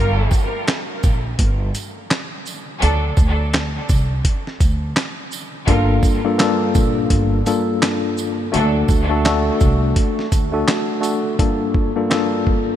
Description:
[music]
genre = hip hop, boom-bap hip-hop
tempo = 84 BPM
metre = 4/4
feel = swing 60% on 16ths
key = G minor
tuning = A4 = 440 Hz
[part]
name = bright studio string section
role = stabs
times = 0.0-8.8 s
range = F#3 to Bb4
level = -27 LUFS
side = right 1 dB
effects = high-pass filter, low-pass filter, diffuse ambient delay
[part]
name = upright bass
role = bass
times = 0.0-10.6 s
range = G1 to D2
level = -20 LUFS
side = equal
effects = none
[part]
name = dusty soul sampler-style drum kit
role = drums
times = 0.3-12.7 s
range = handclaps, hi-hat, kick drum, shaker, snare drum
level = -20 LUFS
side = equal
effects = none
[part]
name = tambourine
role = percussion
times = 0.3-11.2 s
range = none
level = -38 LUFS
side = right 8 dB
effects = none
[part]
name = mellow tine electric piano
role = accompaniment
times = 5.7-12.8 s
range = G2 to A4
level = -20 LUFS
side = left 2 dB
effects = medium stereo tremolo, cassette tape, high-pass filter, low-pass filter
[sound]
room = moderate cathedral reverb, RT60 6.9 s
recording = dreamy mix soaked in reverb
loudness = -16 LUFS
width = side -11 dB against mid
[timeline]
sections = 0.0-11.4 A section; 11.4-12.8 B section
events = break 0.0-5.7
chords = 0.0 Gm7; 2.8 N.C.; 5.7 Gm7; 8.5 D; 11.4 Gm7

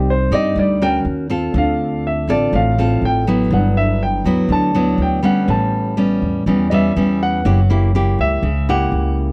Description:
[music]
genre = bossa nova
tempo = 122 BPM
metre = 4/4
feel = straight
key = G major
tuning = A4 = 440 Hz
[part]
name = warm grand piano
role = melody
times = 0.0-9.1 s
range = C5 to A5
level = -23 LUFS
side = equal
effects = none
[part]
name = nylon-string guitar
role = accompaniment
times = 0.0-9.3 s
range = G2 to D5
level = -20 LUFS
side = equal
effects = none
[part]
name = upright bass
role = bass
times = 0.0-9.3 s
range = F#1 to G2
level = -22 LUFS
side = equal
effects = none
[sound]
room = little or no reverb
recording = dry, close 1970s-style studio recording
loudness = -17 LUFS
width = mono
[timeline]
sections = 0.0-9.3 A section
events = grand piano solo 0.0-9.3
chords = 0.0 Cmadd9; 1.1 Ebm7; 1.5 Dm7; 3.5 Gmaj13; 5.5 A9; 7.4 F#7b9

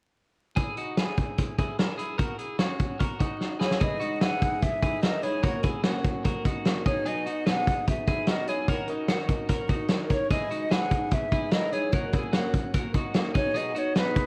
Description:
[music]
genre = jangly indie pop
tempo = 148 BPM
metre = 4/4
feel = straight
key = unclear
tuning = A4 = 439 Hz
[part]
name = twelve-string electric guitar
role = arpeggios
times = 0.6-14.3 s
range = C#4 to C#5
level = -36 LUFS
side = equal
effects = spring reverb
[part]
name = loose indie drum kit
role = drums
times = 0.6-14.3 s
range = hi-hat, kick drum, snare drum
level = -29 LUFS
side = equal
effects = none
[part]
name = breathy mellow silver concert flute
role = melody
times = 3.6-14.3 s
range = B4 to F#5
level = -33 LUFS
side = equal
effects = plate reverb
[part]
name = fingerpicked steel-string acoustic guitar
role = accompaniment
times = 3.8-14.3 s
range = F#2 to A#4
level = -36 LUFS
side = equal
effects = none
[sound]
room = light reverb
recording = worn, warbling old tape, cassette tape, vinyl crackle, warbly pitch drift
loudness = -27 LUFS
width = mono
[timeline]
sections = 0.6-3.8 A section; 3.8-14.3 B section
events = drum fill 3.4-3.8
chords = 0.6 F#13/D#; 2.2 F#; 3.6 C#m; 3.8 C#madd9; 5.4 F#; 6.9 B; 8.7 D#m7; 10.3 C#madd9; 11.9 F#; 13.3 B

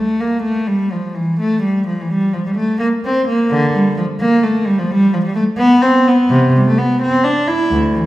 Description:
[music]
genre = classical, baroque-style suite movement for unaccompanied cello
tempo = 85 BPM (dotted quarters)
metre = 6/8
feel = rubato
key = unclear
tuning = A4 = 440 Hz
[part]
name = rich cello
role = solo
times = 0.0-8.1 s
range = D2 to E4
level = -13 LUFS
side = equal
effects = none
[sound]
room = wet recital hall reverb, RT60 1.4 s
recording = heard from further back in the room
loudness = -13 LUFS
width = side -15 dB against mid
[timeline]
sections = 0.0-8.1 A section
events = none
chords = none

